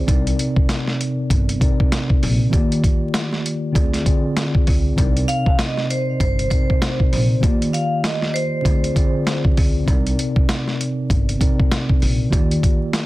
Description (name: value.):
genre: hip hop, boom-bap hip-hop.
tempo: 98 BPM.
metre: 4/4.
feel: swing 60% on 16ths.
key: C minor.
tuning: A4 = 438 Hz.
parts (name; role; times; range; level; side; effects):
mellow tine electric piano; accompaniment; 0.0-13.1 s; C3 to D5; -22 LUFS; equal; slow stereo tremolo, cassette tape.
upright bass; bass; 0.1-12.6 s; G1 to Eb2; -22 LUFS; equal; none.
boom bap sampler-style drum kit; drums; 0.1-13.1 s; hi-hat, kick drum, snare drum; -18 LUFS; equal; none.
vibraphone with medium hard mallets; melody; 5.3-9.4 s; C5 to F5; -24 LUFS; right 1 dB; digital delay.
room: light reverb.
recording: dense, heavily limited modern master, vinyl crackle.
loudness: -16 LUFS.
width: side -18 dB against mid.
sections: 0.0-13.1 A section.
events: none.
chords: 0.1 Cm7; 2.5 Ebmaj7; 3.8 Dm7b5; 5.0 Cm7; 7.4 Ebmaj7; 8.7 Dm7b5; 9.9 Cm7; 12.3 Ebmaj7.